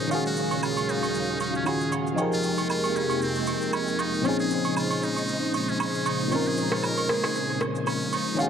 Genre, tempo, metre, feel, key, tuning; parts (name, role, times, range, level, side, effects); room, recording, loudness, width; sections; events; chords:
amapiano; 116 BPM; 4/4; swing 55% on 16ths; Bb minor; A4 = 441 Hz
trumpet with metal mute; melody; 0.0-8.5 s; C4 to Bb4; -30 LUFS; equal; dub echo
barking FM electric piano; accompaniment; 0.0-8.5 s; Bb2 to F5; -27 LUFS; left 1 dB; chorus, phaser, dub echo
string machine, violins; sustained chords; 0.0-8.5 s; Eb2 to G5; -30 LUFS; equal; ensemble chorus
electronic shaker and rim click; drums; 0.0-8.5 s; -34 LUFS; equal; overdrive, vintage 12-bit sampler grit, dub echo
agogo bells and woodblock; percussion; 0.1-8.5 s; -33 LUFS; right 7 dB; dub echo
noise sweep; sound effects; 8.4-8.5 s; -36 LUFS; equal
moderate spring reverb, RT60 2.0 s; echo-heavy mix; -23 LUFS; side -7 dB against mid
0.0-8.5 A section
0.1 Ebm11; 2.2 Fm11; 4.2 Bbm11